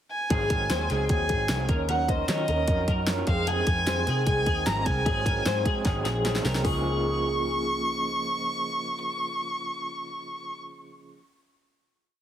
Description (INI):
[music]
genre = jangly indie pop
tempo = 151 BPM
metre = 4/4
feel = straight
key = Db major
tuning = A4 = 440 Hz
[part]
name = dark violin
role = melody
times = 0.1-10.6 s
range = Eb5 to Db6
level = -29 LUFS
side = right 1 dB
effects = none
[part]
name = electric guitar through a small old amp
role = accompaniment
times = 0.3-11.2 s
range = F2 to Bb4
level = -32 LUFS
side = right 2 dB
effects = tremolo
[part]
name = twelve-string electric guitar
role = arpeggios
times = 0.3-7.8 s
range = Ab4 to Db5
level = -31 LUFS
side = left 3 dB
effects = ensemble chorus
[part]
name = vintage muted picked electric bass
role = bass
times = 0.3-11.1 s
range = Ab1 to Eb3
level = -30 LUFS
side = equal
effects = none
[part]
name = pop drum kit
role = drums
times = 0.3-6.7 s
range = hi-hat, kick drum, snare drum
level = -28 LUFS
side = equal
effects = none
[sound]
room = light reverb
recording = heavily compressed radio sound, multiband compression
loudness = -24 LUFS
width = side -10 dB against mid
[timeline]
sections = 0.0-0.3 pickup bar; 0.3-6.6 bridge; 6.6-9.8 final chord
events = drum fill 5.9-6.6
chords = 0.3 Ab7; 1.7 Ebm7; 3.3 Fm7; 5.1 Ab7; 6.6 Db69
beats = | 0.31 0.70 1.10 1.49 | 1.89 2.29 2.68 3.08 | 3.47 3.87 4.27 4.66 | 5.06 5.46 5.85 6.25 | 6.65 7.04 7.44 7.84 | 8.23 8.63 9.02 9.42